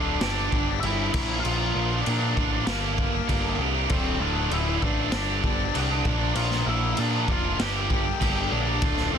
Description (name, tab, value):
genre	quiet-loud alternative rock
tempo	98 BPM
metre	4/4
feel	straight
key	unclear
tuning	A4 = 440 Hz
part	octave-fuzz lead guitar	melody	0.0-9.2 s	Bb3 to G5	-31 LUFS	equal	distortion
part	tonewheel organ	sustained chords	0.0-9.2 s	A4 to D6	-38 LUFS	right 1 dB	none
part	distorted electric guitar	riff	0.0-9.2 s	D2 to Bb4	-31 LUFS	left 12 dB	overdrive
part	scooped high-gain guitar	riff	0.0-9.2 s	D2 to Bb4	-29 LUFS	right 13 dB	distortion
part	growling picked electric bass	bass	0.0-9.2 s	D1 to Bb2	-29 LUFS	equal	overdrive
part	raw garage drum kit	drums	0.2-9.0 s	crash cymbal, kick drum, snare drum	-28 LUFS	equal	none
room	little or no reverb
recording	dense, heavily limited modern master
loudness	-22 LUFS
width	side -8 dB against mid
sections	0.0-9.2 A section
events	none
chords	0.2 Gsus4; 1.1 Bbadd9; 2.7 Gmadd9; 3.9 Dm; 5.1 Gsus4; 6.1 Bbadd9; 7.6 Gmadd9